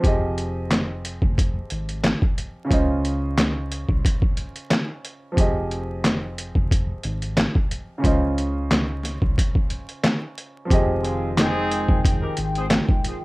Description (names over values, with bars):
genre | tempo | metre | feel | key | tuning
hip hop, boom-bap hip-hop | 90 BPM | 4/4 | swing 54% on 16ths | F minor | A4 = 440 Hz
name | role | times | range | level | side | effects
warm grand piano | accompaniment | 0.0-13.2 s | Db3 to Eb5 | -28 LUFS | right 1 dB | high-pass filter, low-pass filter
hollow-body short-scale fingered electric bass | bass | 0.0-12.8 s | F1 to Db2 | -27 LUFS | equal | none
trip hop sampler-style drum kit | drums | 0.0-13.2 s | handclaps, hi-hat, kick drum, snare drum | -20 LUFS | equal | overdrive
hollow soft pad | sustained chords | 10.7-13.2 s | Eb3 to G5 | -29 LUFS | equal | chorus, high-pass filter, low-pass filter
warm horn section | stabs | 11.0-12.6 s | Ab3 to C5 | -27 LUFS | equal | high-pass filter, low-pass filter, digital delay
room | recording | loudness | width
little or no reverb | rough home demo mix, vinyl crackle | -20 LUFS | side -22 dB against mid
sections
0.0-10.7 A section; 10.7-13.2 B section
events
none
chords
0.0 Fm9; 2.7 Dbmaj7; 5.4 Fm9; 8.0 Dbmaj7; 10.7 Fm9